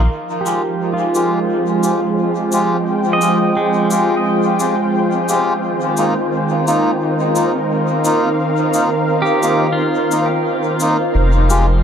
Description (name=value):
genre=ambient dub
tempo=87 BPM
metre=4/4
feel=swing 59% on 16ths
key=F minor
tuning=A4 = 438 Hz
part: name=warm analog pad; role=sustained chords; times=0.0-11.8 s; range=Eb3 to G5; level=-18 LUFS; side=right 1 dB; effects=chorus
part: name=warm sub bass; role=bass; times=0.0-0.1, 11.2-11.8 s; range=F1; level=-13 LUFS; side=equal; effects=none
part: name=wind-like tuned noise texture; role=texture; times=0.8-11.8 s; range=Bb3 to C5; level=-24 LUFS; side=right 1 dB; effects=built-in reverb
part: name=pedal steel guitar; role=arpeggios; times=0.4-11.8 s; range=Ab3 to Eb5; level=-22 LUFS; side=right 2 dB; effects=low-pass filter, analog delay
part: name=melodica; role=stabs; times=0.5-11.7 s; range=Ab3 to G4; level=-19 LUFS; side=left 1 dB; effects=low-pass filter, dub echo
part: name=cabasa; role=drums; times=0.5-11.7 s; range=none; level=-28 LUFS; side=left 4 dB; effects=dub echo
room=moderate spring reverb, RT60 1.8 s, small room ambience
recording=echo-heavy mix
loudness=-14 LUFS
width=side -8 dB against mid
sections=0.1-11.2 A section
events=filter sweep on pedal steel guitar 0.1-11.2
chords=0.1 Fmadd9; 5.6 Ebsus2; 11.2 Fmadd9